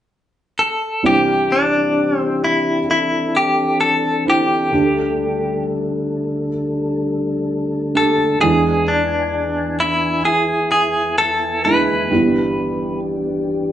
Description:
pop; 65 BPM; 4/4; straight; C major; A4 = 440 Hz
direct-recorded clean electric guitar; melody; 0.6-13.0 s; D4 to B4; -17 LUFS; left 1 dB; tremolo
felt-muted upright piano; accompaniment; 1.0-13.7 s; G1 to G4; -21 LUFS; right 3 dB
percussive tonewheel organ; sustained chords; 1.0-13.7 s; D3 to G#5; -21 LUFS; left 1 dB; chorus vibrato, slow rotary speaker
wet large studio reverb, RT60 0.9 s; band playing live in one room, nothing above 10.7 kHz; -15 LUFS; side -11 dB against mid
0.0-1.0 A section; 1.0-13.7 B section
0.0 N.C.; 1.0 Cadd9; 4.7 Gsus2/D; 8.4 E7; 12.1 G6
0.11 | 1.03 1.96 2.88 3.80 | 4.73 5.65 6.57 7.50 | 8.42 9.34 10.27 11.19 | 12.11 13.04

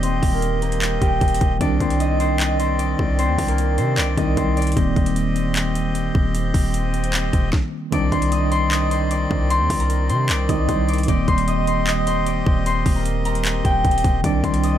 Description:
hip hop, trap; 152 BPM; 4/4; half-time; C minor; A4 = 439 Hz
concert harp; melody; 0.0-14.8 s; G3 to Eb6; -24 LUFS; equal; low-pass filter
tine electric piano; accompaniment; 0.0-14.8 s; Eb3 to Eb4; -24 LUFS; right 1 dB; medium stereo tremolo, low-pass filter
accordion; sustained chords; 0.0-14.8 s; Eb3 to Eb5; -29 LUFS; left 1 dB
hard-hitting 808-style bass; bass; 0.0-14.8 s; Eb1 to C3; -22 LUFS; equal
trap drum kit; drums; 0.0-14.7 s; handclaps, hi-hat, kick drum, snare drum; -22 LUFS; equal
swell; sound effects; 6.2-7.5 s; -36 LUFS; right 1 dB
little or no reverb; dark, warm production; -17 LUFS; side -11 dB against mid
0.0-7.9 A section; 7.9-14.8 B section
filter sweep 0.0-1.6; swell 6.2-7.9; stop 7.5-7.9
0.0 Eb6; 1.6 Cmadd9; 4.8 Eb6; 7.9 Cmadd9; 11.1 Eb6; 14.2 Cmadd9
| 0.03 0.42 0.82 1.21 | 1.61 2.00 2.40 2.79 | 3.19 3.58 3.98 4.37 | 4.77 5.16 5.56 5.95 | 6.35 6.74 7.13 7.53 | 7.92 8.32 8.71 9.11 | 9.50 9.90 10.29 10.69 | 11.08 11.48 11.87 12.27 | 12.66 13.06 13.45 13.85 | 14.24 14.63

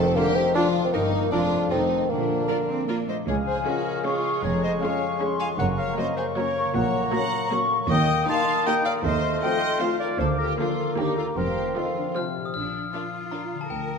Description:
cinematic, playful, whimsical film cue; 156 BPM; 3/4; straight; Bb major, Db major from 3.3 s, Bb major from 7.9 s; A4 = 438 Hz
rich studio violin section; second line; 0.0-13.4 s; C4 to Bb4; -35 LUFS; left 2 dB
warm bassoon; accompaniment; 0.0-12.4 s; Ab3 to D4; -28 LUFS; right 1 dB
mellow French horn section; sustained chords; 0.0-12.6 s; C3 to F4; -32 LUFS; left 5 dB
concert harp; arpeggios; 0.0-14.0 s; F2 to D6; -32 LUFS; left 8 dB
rich studio cello section; bass; 0.0-14.0 s; Db2 to Bb4; -31 LUFS; right 3 dB
rich studio double bass section; bass; 0.0-14.0 s; F1 to Eb2; -32 LUFS; right 4 dB
rich studio violin section; melody; 0.2-13.4 s; Eb4 to Gb5; -34 LUFS; left 3 dB
clear studio viola section; accompaniment; 0.2-13.4 s; Eb3 to Bb4; -33 LUFS; right 3 dB
mellow clarinet; second line; 3.1-12.2 s; G4 to Bb5; -28 LUFS; left 1 dB
mellow flute section; second line; 3.3-12.3 s; F5 to Eb6; -30 LUFS; left 3 dB
warm oboe; second line; 3.3-12.4 s; F5 to Eb6; -34 LUFS; right 2 dB
glockenspiel with soft plastic mallets; melody; 12.2-14.0 s; G5 to F6; -32 LUFS; left 5 dB
wet scoring stage reverb, RT60 1.9 s; -22 LUFS; side -5 dB against mid
0.0-3.3 A section; 3.3-12.5 B section; 12.5-14.0 A section
0.0 F5; 0.9 Eb/G; 1.3 Bb/F; 1.7 F7; 2.1 Bb; 3.3 Db; 4.4 Db/F; 5.6 Gb; 6.8 Gb/Bb; 7.9 Eb; 9.1 F7/Eb; 10.2 Bb/D; 11.0 Ebmaj7; 11.4 F; 12.5 Bb
0.16 0.54 | 0.93 1.32 1.71 | 2.10 2.49 2.89 | 3.28 3.67 4.06 | 4.44 4.83 5.21 | 5.60 5.99 6.37 | 6.75 7.14 7.52 | 7.90 8.28 8.67 | 9.05 9.44 9.82 | 10.20 10.59 10.98 | 11.37 11.76 12.16 | 12.55 12.94 13.32 | 13.71

